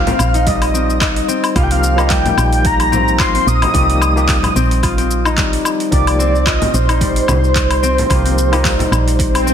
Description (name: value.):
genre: organic downtempo.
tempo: 110 BPM.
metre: 4/4.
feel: swing 55% on 16ths.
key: C minor.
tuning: A4 = 441 Hz.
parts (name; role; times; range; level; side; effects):
breathy flute-like synth lead; melody; 0.0-9.5 s; C5 to Eb6; -18 LUFS; equal; tremolo, ensemble chorus, tape echo.
concert harp; arpeggios; 0.0-9.5 s; G3 to F4; -20 LUFS; left 4 dB; ping-pong delay.
woody FM bass; bass; 0.0-9.5 s; Bb1 to C2; -16 LUFS; right 1 dB; none.
deep house drum kit; drums; 0.1-9.5 s; handclaps, hi-hat, shaker, woodblock; -20 LUFS; left 1 dB; overdrive.
frame drum; percussion; 0.1-8.9 s; none; -24 LUFS; left 3 dB; none.
electronic kick drum; drums; 0.5-9.3 s; none; -19 LUFS; right 1 dB; overdrive.
overdriven tine electric piano; accompaniment; 1.6-8.7 s; F3 to G4; -24 LUFS; left 3 dB; fast tremolo, sidechain pumping, ping-pong delay.
swell; sound effects; 9.3-9.5 s; none; -17 LUFS; left 1 dB; none.
room: light reverb, digital ambience.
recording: dense, heavily limited modern master.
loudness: -12 LUFS.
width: side -8 dB against mid.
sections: 0.0-9.5 A section.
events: swell 9.3.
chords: 0.0 Cm7.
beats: 0.47 1.01 | 1.56 2.10 2.65 3.19 | 3.74 4.29 4.83 5.38 | 5.92 6.47 7.01 7.56 | 8.10 8.65 9.19.